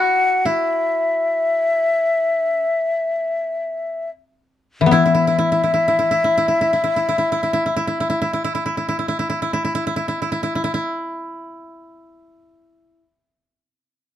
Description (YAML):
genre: japanese traditional, Japanese chamber music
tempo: 36-49 BPM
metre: 4/4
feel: rubato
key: unclear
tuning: A4 = 441 Hz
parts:
  - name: mellow hollow silver concert flute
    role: melody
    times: 0.0-8.4 s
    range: E5 to F#5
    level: -18 LUFS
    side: left 2 dB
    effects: none
  - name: koto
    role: second line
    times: 0.0-13.0 s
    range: E4 to F#4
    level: -22 LUFS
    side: right 1 dB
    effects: none
  - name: koto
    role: accompaniment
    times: 4.8-8.4 s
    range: E3 to E4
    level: -17 LUFS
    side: left 5 dB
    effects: none
room: moderate studio reverb, RT60 0.6 s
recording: dark, warm production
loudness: -17 LUFS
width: side -11 dB against mid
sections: 0.0-4.9 A section; 4.9-11.2 B section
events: slowing down 0.0-4.9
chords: none